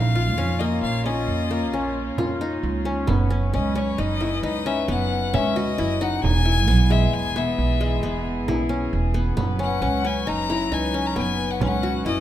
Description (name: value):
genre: contemporary instrumental, chamber music in an uneven meter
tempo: 134 BPM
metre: 7/4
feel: straight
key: unclear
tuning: A4 = 438 Hz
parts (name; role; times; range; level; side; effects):
- clear violin; melody; 0.0-12.2 s; C#5 to A#5; -27 LUFS; left 6 dB; none
- warm chamber string section; sustained chords; 0.0-12.2 s; E3 to B4; -30 LUFS; left 2 dB; none
- qanun; arpeggios; 0.0-12.2 s; G#3 to F#4; -26 LUFS; left 2 dB; none
- upright bass; bass; 0.0-12.2 s; E1 to E#2; -24 LUFS; right 2 dB; none
- frame drum; percussion; 0.6-12.2 s; none; -30 LUFS; right 4 dB; none
room: moderate recital hall reverb, RT60 1.5 s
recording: none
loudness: -20 LUFS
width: side -12 dB against mid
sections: 0.0-12.2 A section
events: none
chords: 0.0 A#m; 3.1 F#sus4; 6.2 E; 9.4 F#sus4